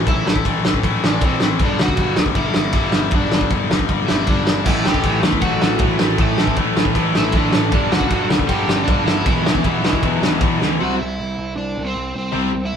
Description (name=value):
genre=punk rock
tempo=157 BPM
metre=4/4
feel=straight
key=unclear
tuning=A4 = 439 Hz
part: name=overdriven semi-hollow guitar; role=melody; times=0.0-12.8 s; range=C4 to G5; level=-25 LUFS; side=right 2 dB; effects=none
part: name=tight distorted guitar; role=riff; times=0.0-12.5 s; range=E2 to C4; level=-21 LUFS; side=left 8 dB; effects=distortion
part: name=fuzz picked electric bass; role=bass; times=0.0-12.8 s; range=E1 to E2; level=-24 LUFS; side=equal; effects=overdrive
part: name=loose indie drum kit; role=drums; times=0.1-10.7 s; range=crash cymbal, kick drum, ride cymbal, snare drum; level=-18 LUFS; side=right 1 dB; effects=none
part: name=distorted electric guitar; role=riff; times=4.7-12.5 s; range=E2 to C4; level=-23 LUFS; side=right 6 dB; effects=distortion
room=light reverb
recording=band playing live in one room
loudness=-15 LUFS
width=side -7 dB against mid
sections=0.0-10.8 A section; 10.8-12.8 B section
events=drum fill 10.6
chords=0.0 Am; 1.6 G5; 4.7 A5; 7.7 G5; 9.3 E5; 10.8 C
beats=| 0.07 0.45 0.84 1.22 | 1.60 1.98 2.37 2.75 | 3.13 3.52 3.90 4.28 | 4.67 5.05 5.43 5.82 | 6.20 6.58 6.96 7.35 | 7.73 8.12 8.50 8.88 | 9.27 9.65 10.03 10.42 | 10.80 11.19 11.57 11.96 | 12.35 12.73